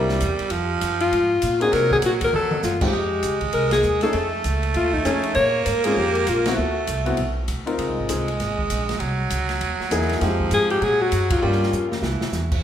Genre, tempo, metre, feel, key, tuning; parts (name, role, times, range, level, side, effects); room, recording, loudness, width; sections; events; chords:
jazz, small-group swing and bop; 198 BPM; 4/4; swing 61% on 8ths; A4 = 439 Hz
clear alto saxophone; melody; 0.0-6.9, 10.5-11.9 s; C#4 to Db5; -21 LUFS; left 2 dB
growling baritone saxophone; second line; 0.0-12.5 s; E3 to Bb3; -26 LUFS; right 5 dB
warm grand piano; accompaniment; 0.0-12.0 s; G3 to Bb4; -26 LUFS; left 3 dB
upright bass; bass; 0.0-12.6 s; Ab1 to C3; -26 LUFS; right 1 dB
open jazz drum kit; drums; 0.1-12.6 s; crash cymbal, hi-hat, kick drum, ride cymbal, snare drum, toms; -29 LUFS; equal
moderate recital hall reverb, RT60 1.4 s; recorded in a church or concert hall; -19 LUFS; side -10 dB against mid
0.0-2.9 A section; 2.9-12.6 B section
drum fill 2.3-2.6, 11.7-12.3; band accent 3.7, 6.4, 11.3
0.0 C7; 0.5 Fm; 1.7 Cm7b5; 2.3 F7b9; 2.9 Fm9; 4.1 F7alt; 5.4 Bbm9; 6.6 D13; 7.8 Dbmaj9 (rootless); 9.0 C7alt; 10.2 Fm9; 10.8 Gbadd9; 11.4 Gm7b5; 12.0 C